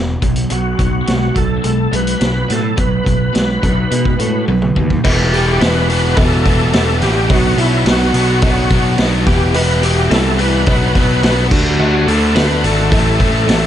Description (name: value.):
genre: classic rock.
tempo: 106 BPM.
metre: 4/4.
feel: straight.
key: E minor.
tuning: A4 = 441 Hz.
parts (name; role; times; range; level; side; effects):
overdriven electric guitar; riff; 0.0-13.7 s; E2 to D4; -21 LUFS; left 12 dB; none.
overdriven electric guitar; riff; 0.0-13.7 s; E2 to G4; -22 LUFS; right 11 dB; none.
fuzz picked electric bass; bass; 0.0-13.7 s; E1 to B2; -16 LUFS; equal; overdrive.
vintage drum kit; drums; 0.2-13.6 s; crash cymbal, hi-hat, kick drum, snare drum, toms; -17 LUFS; equal; none.
overdriven tonewheel organ; melody; 0.5-13.7 s; E4 to B4; -19 LUFS; equal; slow rotary speaker, chorus vibrato, slapback echo.
electric slide guitar; second line; 3.6-4.9 s; D#4 to B4; -26 LUFS; left 3 dB; none.
overdriven reed electric piano; accompaniment; 5.0-13.7 s; A3 to B4; -26 LUFS; right 6 dB; none.
raw garage guitar; riff; 5.0-13.7 s; E2 to D4; -24 LUFS; equal; none.
cowbell; percussion; 5.0-13.6 s; none; -30 LUFS; left 2 dB; none.
room: light reverb.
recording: nothing above 10.7 kHz.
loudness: -11 LUFS.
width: side -10 dB against mid.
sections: 0.0-5.1 A section; 5.1-13.7 B section.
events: drum fill 4.5-5.1.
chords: 0.2 B5; 5.1 Em; 7.3 Bm; 9.3 Em; 10.7 Bm; 11.5 D; 12.9 Am.